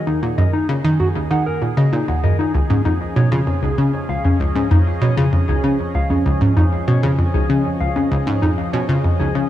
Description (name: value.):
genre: ambient, sequencer-driven space music.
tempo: 97 BPM.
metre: 4/4.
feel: straight.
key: unclear.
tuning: A4 = 439 Hz.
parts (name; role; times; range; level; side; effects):
sweeping resonant pad; sustained chords; 0.0-9.5 s; Eb3 to Eb5; -26 LUFS; right 2 dB; chorus.
mellow electric guitar; arpeggios; 0.0-9.5 s; Db4 to Gb5; -22 LUFS; moving between left 7 dB and equal; auto-pan, analog delay.
analog pluck; riff; 0.1-9.4 s; Db2 to Eb3; -17 LUFS; equal; chorus, analog delay.
room: light reverb, digital ambience.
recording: cassette tape.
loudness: -15 LUFS.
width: side -12 dB against mid.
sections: 0.0-9.5 A section.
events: none.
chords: 0.0 Ebm; 2.5 Dbadd9.